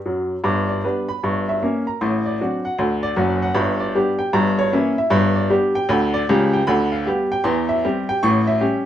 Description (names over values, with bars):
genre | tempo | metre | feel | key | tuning
jazz, stride piano | 154 BPM | 4/4 | swing 64% on 8ths | G major | A4 = 440 Hz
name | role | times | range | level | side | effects
clear upright piano | solo | 0.0-8.9 s | F#1 to D6 | -17 LUFS | equal | none
room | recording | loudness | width
wet studio reverb, RT60 0.5 s | band playing live in one room | -17 LUFS | side -11 dB against mid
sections
0.4-8.9 A section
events
upright piano fill 0.0-0.4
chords
0.4 G; 1.2 Gdim7; 2.0 D7/A; 3.6 G; 4.3 Gdim7; 5.1 G; 6.7 G7/D; 7.4 C/E; 8.2 A7